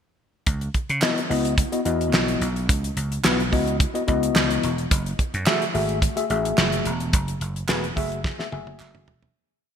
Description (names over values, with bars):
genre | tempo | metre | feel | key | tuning
early-eighties boogie funk | 108 BPM | 4/4 | straight | C# minor | A4 = 440 Hz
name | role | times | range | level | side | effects
vintage slap bass | bass | 0.5-9.3 s | E1 to C#3 | -26 LUFS | right 1 dB | none
damped 70s drum kit | drums | 0.5-9.3 s | hi-hat, kick drum, snare drum, toms | -24 LUFS | equal | gated reverb
mellow tine electric piano | accompaniment | 1.0-9.3 s | A3 to G#5 | -25 LUFS | left 3 dB | wide subtle chorus
group handclap | percussion | 1.0-8.9 s | none | -30 LUFS | right 4 dB | none
room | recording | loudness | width
light reverb, studio reverb | bright 1980s-style digital production | -20 LUFS | side -8 dB against mid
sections
0.5-9.4 verse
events
fade-out 7.1-9.4; drum fill 8.2-9.4; tine electric piano fill 8.2-9.4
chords
0.5 C#m11; 4.9 F#m9